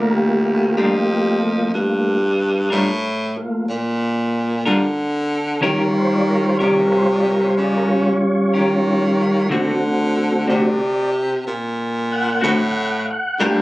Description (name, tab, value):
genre	slow blues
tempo	62 BPM (dotted quarters)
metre	12/8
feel	straight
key	G minor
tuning	A4 = 441 Hz
part	tonewheel organ	sustained chords	0.0-13.6 s	G3 to G5	-18 LUFS	equal	slow rotary speaker, chorus vibrato
part	breathy baritone saxophone	bass	0.0-13.6 s	D2 to Eb3	-20 LUFS	equal	none
part	clean electric guitar	accompaniment	0.8-13.6 s	D3 to Bb4	-18 LUFS	left 1 dB	tremolo
room	light reverb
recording	recorded on a phone in the room, club reverb, compression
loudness	-16 LUFS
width	side -19 dB against mid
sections	0.0-13.6 A section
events	tonewheel organ solo 0.0-13.6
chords	0.0 Gm7; 5.6 Eb7; 9.5 D7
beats	0.77 | 1.74 2.71 3.69 4.66 | 5.63 6.60 7.57 8.54 | 9.51 10.48 11.45 12.42 | 13.39